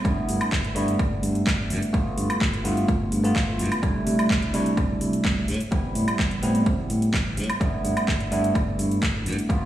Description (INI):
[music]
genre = filtered disco house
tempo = 127 BPM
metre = 4/4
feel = straight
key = G major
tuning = A4 = 440 Hz
[part]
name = bell-like tine electric piano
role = accompaniment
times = 0.0-9.7 s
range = G3 to F4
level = -26 LUFS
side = right 1 dB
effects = phaser, sidechain pumping
[part]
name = modern bright fingered electric bass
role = bass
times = 0.0-9.6 s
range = G1 to C3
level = -27 LUFS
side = equal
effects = tube saturation, sidechain pumping
[part]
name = electronic kick drum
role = drums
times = 0.0-9.6 s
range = none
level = -26 LUFS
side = equal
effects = overdrive
[part]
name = house drum kit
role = drums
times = 0.1-9.6 s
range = handclaps, hi-hat, shaker, woodblock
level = -30 LUFS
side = equal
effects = overdrive, sidechain pumping on hats, sidechain pumping on perc
[sound]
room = little or no reverb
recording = played on a big sound system in a bare room, stone room reverb, small room ambience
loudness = -21 LUFS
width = side -12 dB against mid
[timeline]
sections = 0.0-9.7 A section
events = none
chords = 0.1 G6; 1.9 G13; 3.8 C69; 5.5 Am9; 7.6 G6